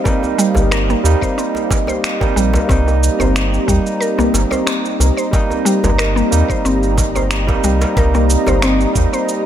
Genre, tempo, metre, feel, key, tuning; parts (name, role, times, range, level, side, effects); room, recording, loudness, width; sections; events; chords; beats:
organic downtempo; 91 BPM; 4/4; swing 54% on 16ths; A4 = 440 Hz
barky tine electric piano; accompaniment; 0.0-9.5 s; G3 to Eb4; -20 LUFS; right 4 dB; overdrive, auto-pan, sidechain pumping, ping-pong delay
warm analog pad; sustained chords; 0.0-9.5 s; C4 to Bb5; -22 LUFS; left 1 dB; chorus, sidechain pumping
electronic cabasa and finger snaps; drums; 0.1-9.4 s; -23 LUFS; right 1 dB
electronic kick drum; drums; 0.1-9.1 s; -17 LUFS; equal
djembe; percussion; 0.1-8.6 s; -24 LUFS; right 1 dB
mallet-like synth pluck; arpeggios; 0.4-9.2 s; G3 to C5; -20 LUFS; left 1 dB; chorus, ping-pong delay
warm sub bass; bass; 0.6-9.1 s; G1 to Eb2; -16 LUFS; equal; sidechain pumping
light reverb; -13 LUFS; side -10 dB against mid
0.0-9.5 A section
0.0 Cm7
| 0.06 0.71 1.37 2.03 | 2.69 3.35 4.01 4.67 | 5.33 5.99 6.65 7.31 | 7.97 8.63 9.29